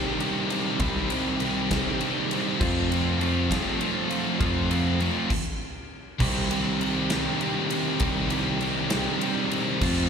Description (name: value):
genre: quiet-loud alternative rock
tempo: 67 BPM (dotted quarters)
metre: 6/8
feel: straight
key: C dorian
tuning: A4 = 440 Hz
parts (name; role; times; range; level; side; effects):
- scooped high-gain guitar; riff; 0.0-10.1 s; C3 to G4; -30 LUFS; left 12 dB; distortion, slapback echo
- sludgy distorted guitar; riff; 0.0-10.1 s; C3 to G4; -31 LUFS; right 10 dB; overdrive, slapback echo
- thick fuzz guitar; riff; 0.0-10.1 s; C3 to G4; -29 LUFS; equal; distortion, slapback echo
- huge arena drum kit; drums; 0.2-10.0 s; crash cymbal, kick drum, ride cymbal, snare drum; -31 LUFS; equal; none
- growling picked electric bass; bass; 0.8-10.1 s; C2 to F2; -27 LUFS; equal; overdrive
room: studio ambience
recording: live gig heard through the venue's PA, club reverb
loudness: -23 LUFS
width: side -6 dB against mid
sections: 0.0-6.2 A section; 6.2-10.1 B section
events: stop 5.3-6.2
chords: 0.0 Cm; 2.6 F; 6.2 Cm